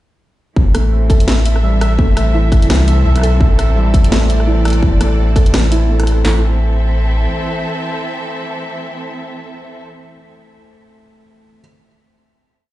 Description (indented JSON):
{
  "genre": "half-time drum and bass",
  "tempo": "169 BPM",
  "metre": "4/4",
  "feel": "swing 57% on 16ths, half-time",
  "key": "A minor",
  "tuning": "A4 = 440 Hz",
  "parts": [
    { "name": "clear symphonic string section", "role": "sustained chords", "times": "0.6-9.8 s", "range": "E3 to E5", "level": "-24 LUFS", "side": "equal", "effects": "sidechain pumping" },
    { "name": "saturated sub bass", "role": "bass", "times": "0.6-7.3 s", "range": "A1 to C2", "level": "-13 LUFS", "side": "equal", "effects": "none" },
    { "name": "industrial drum kit", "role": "drums", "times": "0.6-6.3 s", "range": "hi-hat, kick drum, snare drum", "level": "-13 LUFS", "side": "equal", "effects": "distortion, studio reverb" },
    { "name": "pulsing gated texture", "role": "texture", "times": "0.9-6.3 s", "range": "E5", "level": "-27 LUFS", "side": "right 2 dB", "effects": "chorus, built-in reverb" },
    { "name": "felt-muted upright piano", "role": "arpeggios", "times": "0.7-6.4 s", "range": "E3 to A4", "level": "-21 LUFS", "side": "right 1 dB", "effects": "tape echo" },
    { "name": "drum and bass drum kit", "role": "drums", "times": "0.7-6.2 s", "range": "hi-hat, rim click, snare drum", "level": "-21 LUFS", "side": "left 1 dB", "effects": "studio reverb" }
  ],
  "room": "digital ambience",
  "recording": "played on a big sound system in a bare room, large studio reverb, nothing above 10.9 kHz",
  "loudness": "-11 LUFS",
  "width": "side -16 dB against mid",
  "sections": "0.6-6.2 drop; 6.2-9.1 final chord",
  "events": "drop 0.6-6.2",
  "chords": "0.6 Am"
}